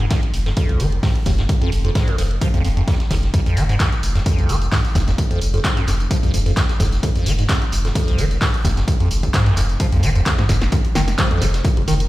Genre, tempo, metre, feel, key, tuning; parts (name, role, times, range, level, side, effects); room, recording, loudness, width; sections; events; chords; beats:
acid house; 130 BPM; 4/4; swing 54% on 16ths; F minor; A4 = 440 Hz
liquid acid bass; riff; 0.0-11.9 s; F1 to F3; -21 LUFS; equal; phaser, overdrive, vintage 12-bit sampler grit, sidechain pumping, digital delay
saturated sub bass; bass; 0.0-12.1 s; F1 to C2; -20 LUFS; equal; sidechain pumping
punchy analog drum machine; drums; 0.0-12.1 s; handclaps, hi-hat, snare drum, tambourine; -26 LUFS; equal
electronic kick drum; drums; 0.1-11.7 s; -19 LUFS; equal
street-band drum kit; drums; 0.1-12.0 s; hi-hat, snare drum; -34 LUFS; equal; sidechain pumping on hats, high-pass filter on hats, high-pass filter on snare, high-pass filter on room
light reverb, small room ambience; played on a big sound system in a bare room, stone room reverb; -16 LUFS; side -17 dB against mid
0.0-10.7 A section; 10.7-12.1 B section
drum fill 10.4-10.7; drop 10.7-12.1
0.11 0.57 1.03 | 1.49 1.95 2.42 2.88 | 3.34 3.80 4.26 4.72 | 5.18 5.65 6.11 6.57 | 7.03 7.49 7.95 8.41 | 8.88 9.34 9.80 10.26 | 10.72 11.18 11.65